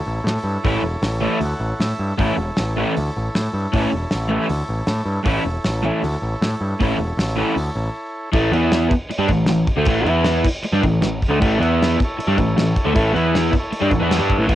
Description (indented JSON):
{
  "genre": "garage rock duo or trio",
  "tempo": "156 BPM",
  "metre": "4/4",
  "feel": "straight",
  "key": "A mixolydian",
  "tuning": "A4 = 440 Hz",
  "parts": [
    { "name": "combo organ", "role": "sustained chords", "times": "0.0-8.3, 11.6-14.5 s", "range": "E4 to A5", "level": "-28 LUFS", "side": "right 1 dB", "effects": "cassette tape" },
    { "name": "growling picked electric bass", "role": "bass", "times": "0.1-14.6 s", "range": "E1 to A2", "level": "-22 LUFS", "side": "equal", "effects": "overdrive" },
    { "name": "cloth-damped thuddy drum kit", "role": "drums", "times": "0.3-14.6 s", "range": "crash cymbal, hi-hat, kick drum, snare drum", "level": "-23 LUFS", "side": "equal", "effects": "cassette tape" },
    { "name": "crunchy overdriven guitar", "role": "riff", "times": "0.6-14.6 s", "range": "A2 to G4", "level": "-18 LUFS", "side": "equal", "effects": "cassette tape" }
  ],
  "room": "little or no reverb",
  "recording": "home recording on cassette",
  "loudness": "-17 LUFS",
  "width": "side -13 dB against mid",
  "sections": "0.0-8.3 A section; 8.3-14.5 B section",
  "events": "transistor combo organ fill 1.0-2.2; break 8.0-8.3",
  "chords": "0.0 A; 8.3 A5; 8.5 E5; 8.9 A5; 10.1 E5; 10.5 A5; 11.6 E5; 12.0 A; 13.1 E5; 13.5 A"
}